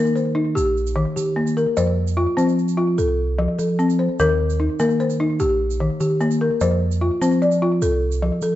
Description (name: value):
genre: west african traditional, West African string and xylophone music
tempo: 99 BPM (dotted quarters)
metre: 12/8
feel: straight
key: F mixolydian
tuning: A4 = 440 Hz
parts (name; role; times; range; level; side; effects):
- balafon; arpeggios; 0.0-8.6 s; Eb3 to D5; -19 LUFS; left 2 dB; slapback echo
- pure sine sub bass; bass; 0.0-8.6 s; Bb1 to F3; -22 LUFS; right 2 dB; none
- tube shaker; percussion; 0.1-8.5 s; none; -39 LUFS; right 13 dB; none
room: light reverb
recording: dark, warm production, nothing above 7.8 kHz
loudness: -17 LUFS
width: side -13 dB against mid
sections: 0.0-8.6 A section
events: none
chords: 0.0 Eb; 1.8 F; 4.2 Eb; 6.6 F